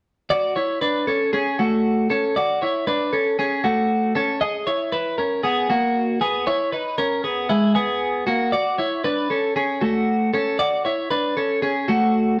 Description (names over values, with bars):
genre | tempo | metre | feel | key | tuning
indie pop | 117 BPM | 4/4 | straight | unclear | A4 = 440 Hz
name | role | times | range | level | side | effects
twelve-string electric guitar | solo | 0.3-12.4 s | G#3 to D#5 | -21 LUFS | equal | none
room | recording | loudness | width
wet stone room reverb, RT60 1.1 s | band playing live in one room | -21 LUFS | mono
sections
0.3-8.5 A section; 8.5-12.4 B section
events
none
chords
0.3 Dmaj7; 4.4 E6; 8.5 Dmaj7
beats
| 0.30 0.82 1.33 1.85 | 2.36 2.87 3.39 3.90 | 4.41 4.93 5.44 5.96 | 6.47 6.99 7.50 8.02 | 8.53 9.05 9.56 10.08 | 10.59 11.11 11.62 12.14